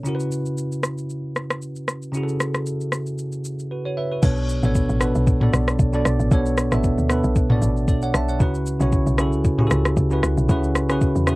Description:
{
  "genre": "amapiano",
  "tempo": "115 BPM",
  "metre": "4/4",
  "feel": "swing 55% on 16ths",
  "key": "B minor",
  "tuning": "A4 = 440 Hz",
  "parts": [
    { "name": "bell-like tine electric piano", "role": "accompaniment", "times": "0.0-11.4 s", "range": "B2 to A5", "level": "-22 LUFS", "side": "equal", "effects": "lush chorus" },
    { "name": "smooth R&B drum kit", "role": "drums", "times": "0.1-11.4 s", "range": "crash cymbal, kick drum, rim click, shaker, toms", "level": "-21 LUFS", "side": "equal", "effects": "none" },
    { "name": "woody log drum bass", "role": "bass", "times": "4.2-11.4 s", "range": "A1 to E2", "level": "-22 LUFS", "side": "equal", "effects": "none" }
  ],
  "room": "little or no reverb",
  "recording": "worn, warbling old tape, cassette tape, warbly pitch drift",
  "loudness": "-19 LUFS",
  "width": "side -21 dB against mid",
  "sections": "0.0-4.2 A section; 4.2-11.4 B section",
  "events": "drop 4.2-11.4",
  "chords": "0.1 F#7sus4/C#; 4.2 Bm9; 8.4 F#7sus4"
}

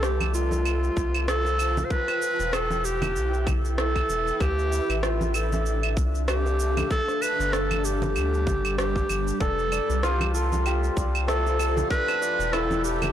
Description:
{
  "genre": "organic downtempo",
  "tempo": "96 BPM",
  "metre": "4/4",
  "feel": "swing 56% on 16ths",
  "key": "unclear",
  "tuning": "A4 = 438 Hz",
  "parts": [
    { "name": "warm clarinet", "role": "melody", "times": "0.0-13.1 s", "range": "F4 to C5", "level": "-27 LUFS", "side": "right 1 dB", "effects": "tape echo" },
    { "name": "granular cloud pad", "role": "sustained chords", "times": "0.0-13.1 s", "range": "G3 to A5", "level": "-32 LUFS", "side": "left 1 dB", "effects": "built-in reverb, sidechain pumping" },
    { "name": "santur", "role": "arpeggios", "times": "0.0-3.2, 9.4-13.1 s", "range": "A3 to D5", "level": "-31 LUFS", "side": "left 2 dB", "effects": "digital delay" },
    { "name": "round analog bass", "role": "bass", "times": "0.0-13.1 s", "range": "E1 to D2", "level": "-27 LUFS", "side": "equal", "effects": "tube saturation" },
    { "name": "electronic rim click, cabasa and claves", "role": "drums", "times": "0.0-13.1 s", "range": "none", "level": "-31 LUFS", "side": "right 2 dB", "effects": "overdrive" },
    { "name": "congas and bongos", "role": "percussion", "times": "0.2-13.1 s", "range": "none", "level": "-35 LUFS", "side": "right 3 dB", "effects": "none" },
    { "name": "electronic kick drum", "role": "drums", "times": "1.0-12.0 s", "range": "none", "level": "-27 LUFS", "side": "equal", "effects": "overdrive" }
  ],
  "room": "light reverb, digital ambience",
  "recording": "blown-out, overdriven recording, overdrive",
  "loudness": "-22 LUFS",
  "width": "side -10 dB against mid",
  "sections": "0.0-13.1 A section",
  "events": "none",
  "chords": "0.0 F; 1.9 Em; 4.4 Dm7; 6.9 G; 9.4 F; 11.9 Em7"
}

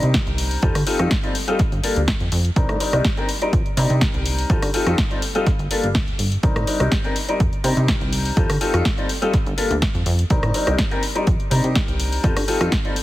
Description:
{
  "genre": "filtered disco house",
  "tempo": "124 BPM",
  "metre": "4/4",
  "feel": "straight",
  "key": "C dorian",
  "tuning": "A4 = 440 Hz",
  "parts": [
    { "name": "clear concert grand piano", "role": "accompaniment", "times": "0.0-12.9 s", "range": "G3 to Bb4", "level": "-23 LUFS", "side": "left 2 dB", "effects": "phaser, vintage 12-bit sampler grit, sidechain pumping, low-pass filter" },
    { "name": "plucky analog bass", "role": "bass", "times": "0.0-12.7 s", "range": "G1 to D3", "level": "-21 LUFS", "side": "equal", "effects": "tube saturation, sidechain pumping, low-pass filter" },
    { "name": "house drum kit", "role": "drums", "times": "0.0-13.0 s", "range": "hi-hat, rim click, snare drum", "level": "-25 LUFS", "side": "equal", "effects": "sidechain pumping on hats, sidechain pumping on cymbals" },
    { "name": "electronic kick drum", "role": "drums", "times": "0.1-12.8 s", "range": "none", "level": "-22 LUFS", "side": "equal", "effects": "none" }
  ],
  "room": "little or no reverb",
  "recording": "heavily compressed radio sound, multiband compression",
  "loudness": "-17 LUFS",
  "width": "side -16 dB against mid",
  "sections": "0.0-13.0 A section",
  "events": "none",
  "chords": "0.0 Cm7; 0.6 F7; 1.6 Gm7; 2.6 Cm7; 4.5 F7; 5.5 Gm7; 6.4 Cm7; 8.4 F7; 9.3 Gm7; 10.3 Cm7; 12.2 F7"
}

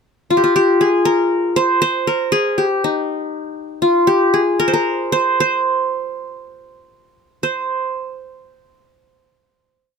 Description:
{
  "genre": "turkish",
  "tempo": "191-239 BPM (eighths)",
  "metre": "7/8",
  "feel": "straight",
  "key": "C makam nihavent",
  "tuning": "A4 = 437 Hz",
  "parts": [
    { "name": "qanun", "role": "solo", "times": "0.3-10.0 s", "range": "Eb4 to C5", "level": "-15 LUFS", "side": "equal", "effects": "none" }
  ],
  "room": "little or no reverb",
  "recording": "close, detailed microphones",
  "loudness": "-15 LUFS",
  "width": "side -6 dB against mid",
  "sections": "0.1-7.4 A section; 7.4-10.0 final note",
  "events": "slowing down 3.6-7.4",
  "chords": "none"
}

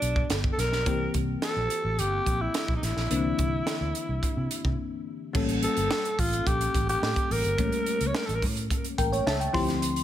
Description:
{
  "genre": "polished 1980s jazz-funk pop",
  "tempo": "107 BPM",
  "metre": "4/4",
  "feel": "straight",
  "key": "unclear",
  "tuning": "A4 = 438 Hz",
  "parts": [
    { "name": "raspy alto saxophone", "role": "melody", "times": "0.0-8.4 s", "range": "D4 to C#5", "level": "-29 LUFS", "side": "equal", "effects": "digital delay" },
    { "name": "bell-like FM electric piano", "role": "accompaniment", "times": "0.0-10.0 s", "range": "D3 to C6", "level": "-31 LUFS", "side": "left 4 dB", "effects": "analog chorus" },
    { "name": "vintage muted fingered electric bass", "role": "bass", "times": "0.0-10.0 s", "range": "G1 to C3", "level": "-30 LUFS", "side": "equal", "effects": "none" },
    { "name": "crisp fusion drum kit", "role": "drums", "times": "0.0-10.0 s", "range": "crash cymbal, hi-hat, kick drum, snare drum", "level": "-30 LUFS", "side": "right 1 dB", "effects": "none" }
  ],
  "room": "light reverb",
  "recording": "none",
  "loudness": "-24 LUFS",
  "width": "side -11 dB against mid",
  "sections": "0.0-5.3 A section; 5.3-10.0 B section",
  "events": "break 4.8-5.3; FM electric piano fill 8.7-9.8",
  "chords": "0.0 G7; 0.9 C7; 5.3 A7b9"
}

